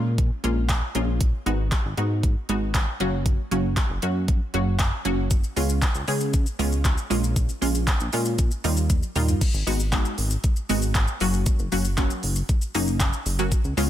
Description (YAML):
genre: dance-pop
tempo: 117 BPM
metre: 4/4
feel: straight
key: unclear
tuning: A4 = 440 Hz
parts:
  - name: punchy chord stab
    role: accompaniment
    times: 0.0-13.9 s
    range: F#3 to G#4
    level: -27 LUFS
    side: right 1 dB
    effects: chorus, sidechain pumping
  - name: chorused synth bass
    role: bass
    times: 0.0-13.9 s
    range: F#1 to C#3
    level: -25 LUFS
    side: equal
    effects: sidechain pumping
  - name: pop drum kit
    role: drums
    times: 0.2-13.9 s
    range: crash cymbal, handclaps, hi-hat, kick drum, shaker, toms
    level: -24 LUFS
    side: equal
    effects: none
room: digital ambience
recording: none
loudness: -21 LUFS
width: side -12 dB against mid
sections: 0.0-9.4 A section; 9.4-13.9 B section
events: drum fill 8.9-9.4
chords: 0.0 A#m7; 1.2 G#m7; 3.0 F#; 5.3 C#7; 7.1 A#m7; 8.4 D#add9; 9.4 G#m7; 11.2 F#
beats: 0.18 0.69 | 1.21 1.72 2.23 2.75 | 3.26 3.77 4.29 4.80 | 5.31 5.82 6.34 6.85 | 7.36 7.88 8.39 8.90 | 9.41 9.93 10.44 10.95 | 11.46 11.98 12.49 13.00 | 13.52